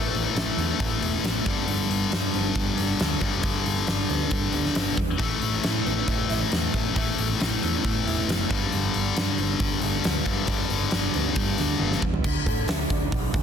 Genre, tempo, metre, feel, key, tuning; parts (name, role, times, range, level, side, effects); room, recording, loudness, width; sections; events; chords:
quiet-loud alternative rock; 136 BPM; 4/4; straight; A4 = 439 Hz
electric guitar through a small old amp; arpeggios; 0.0-13.4 s; D3 to A4; -32 LUFS; right 7 dB; phaser
high-gain distorted guitar; riff; 0.0-12.0 s; G2 to A3; -26 LUFS; left 7 dB; distortion
hollow-body short-scale picked electric bass; bass; 0.0-13.4 s; E1 to A2; -30 LUFS; right 1 dB
huge arena drum kit; drums; 0.1-13.4 s; crash cymbal, hi-hat, kick drum, snare drum, toms; -27 LUFS; equal
small room ambience; dense, heavily limited modern master; -22 LUFS; side -7 dB against mid
0.0-12.2 A section; 12.2-13.4 B section
drum fill 11.8-12.2
0.0 Asus2; 1.5 G; 5.2 Asus2; 8.5 G; 12.2 D